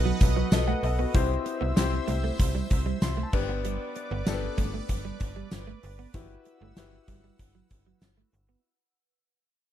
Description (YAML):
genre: 1980s-style pop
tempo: 96 BPM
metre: 4/4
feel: straight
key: unclear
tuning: A4 = 440 Hz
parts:
  - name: clear concert grand piano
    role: accompaniment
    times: 0.0-8.7 s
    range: B3 to C6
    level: -34 LUFS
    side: left 8 dB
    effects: none
  - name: sweeping resonant pad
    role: sustained chords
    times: 0.0-8.6 s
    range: B4 to E6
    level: -37 LUFS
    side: right 3 dB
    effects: chorus
  - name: slap-like FM bass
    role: bass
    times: 0.0-8.6 s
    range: G1 to C2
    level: -30 LUFS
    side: equal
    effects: none
  - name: direct-recorded clean electric guitar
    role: riff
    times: 0.1-8.6 s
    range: E3 to C4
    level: -35 LUFS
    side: right 9 dB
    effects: wide subtle chorus
  - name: gated 80s drum kit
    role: drums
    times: 0.2-8.5 s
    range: crash cymbal, hi-hat, kick drum, snare drum, tambourine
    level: -26 LUFS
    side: equal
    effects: none
room: studio ambience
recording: lossy compression artefacts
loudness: -25 LUFS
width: side -11 dB against mid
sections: 0.0-8.6 A section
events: fade-out 0.0-8.6; grand piano fill 2.7-3.6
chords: 0.0 B; 1.1 C; 3.3 G; 6.1 Emadd9/G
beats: 0.52 | 1.14 1.77 2.39 3.02 | 3.64 4.27 4.89 5.52 | 6.14 6.77 7.39 8.02